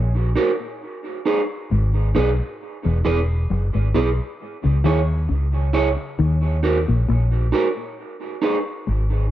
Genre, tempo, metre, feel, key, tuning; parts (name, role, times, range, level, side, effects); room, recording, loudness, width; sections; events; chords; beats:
reggae; 67 BPM; 4/4; swing 55% on 16ths; A4 = 440 Hz
mellow electric guitar; riff; 0.0-9.1 s; E2 to D#3; -26 LUFS; left 5 dB; dub echo
vintage muted fingered electric bass; bass; 0.0-9.3 s; E1 to D#2; -19 LUFS; equal
electric guitar at the edge of break-up; accompaniment; 0.4-8.6 s; D#4 to C#5; -23 LUFS; right 3 dB; dub echo
light reverb; echo-heavy mix; -18 LUFS; side -13 dB against mid
0.0-9.3 A section
0.0 D#m; 0.8 G#m; 2.6 E; 4.4 C#m; 6.2 D#m; 8.0 N.C.
0.81 1.71 | 2.60 3.50 4.40 5.29 | 6.19 7.08 7.98 8.87